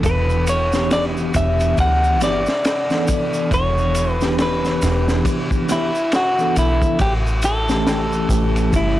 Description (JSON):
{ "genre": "trip hop", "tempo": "69 BPM", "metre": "4/4", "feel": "swing 60% on 16ths", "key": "E dorian", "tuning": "A4 = 441 Hz", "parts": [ { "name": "mellow tine electric piano", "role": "accompaniment", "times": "0.0-9.0 s", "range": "E3 to A4", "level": "-23 LUFS", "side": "equal", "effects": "medium stereo tremolo, harmonic tremolo, tape echo" }, { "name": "deep dub fingered electric bass", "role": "bass", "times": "0.0-9.0 s", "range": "E1 to D2", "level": "-21 LUFS", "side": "equal", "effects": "tube saturation" }, { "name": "crunchy breakbeat drum kit", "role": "drums", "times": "0.0-9.0 s", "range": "kick drum, ride cymbal, snare drum", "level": "-22 LUFS", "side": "equal", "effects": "none" }, { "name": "tube shaker", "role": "percussion", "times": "0.0-8.9 s", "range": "none", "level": "-35 LUFS", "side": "right 4 dB", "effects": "none" }, { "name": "clean electric guitar", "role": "melody", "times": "0.1-9.0 s", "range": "E4 to F#5", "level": "-20 LUFS", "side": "equal", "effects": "vintage 12-bit sampler grit, tape echo" } ], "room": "light reverb, studio reverb", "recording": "blown-out, overdriven recording, vinyl crackle, overdrive", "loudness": "-16 LUFS", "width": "side -14 dB against mid", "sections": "0.0-9.0 A section", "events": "none", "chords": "0.0 Em7; 7.0 A7" }